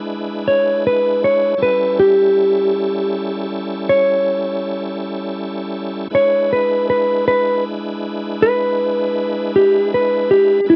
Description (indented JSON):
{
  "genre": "blues",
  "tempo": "53 BPM (dotted quarters)",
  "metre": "12/8",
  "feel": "straight",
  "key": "unclear",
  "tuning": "A4 = 441 Hz",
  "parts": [
    { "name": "clean lap steel guitar", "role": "melody", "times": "0.0-10.8 s", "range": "E4 to E5", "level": "-16 LUFS", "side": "equal", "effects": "none" },
    { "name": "bright tonewheel organ", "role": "sustained chords", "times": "0.0-10.8 s", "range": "G3 to B4", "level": "-26 LUFS", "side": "equal", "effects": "overdrive, chorus vibrato, stopped rotary speaker" }
  ],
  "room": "light reverb",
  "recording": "dry, close 1970s-style studio recording",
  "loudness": "-17 LUFS",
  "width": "mono",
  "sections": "0.0-10.8 A section",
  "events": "electric slide guitar solo 0.0-10.8",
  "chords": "0.0 E7; 1.6 A7; 6.1 E7"
}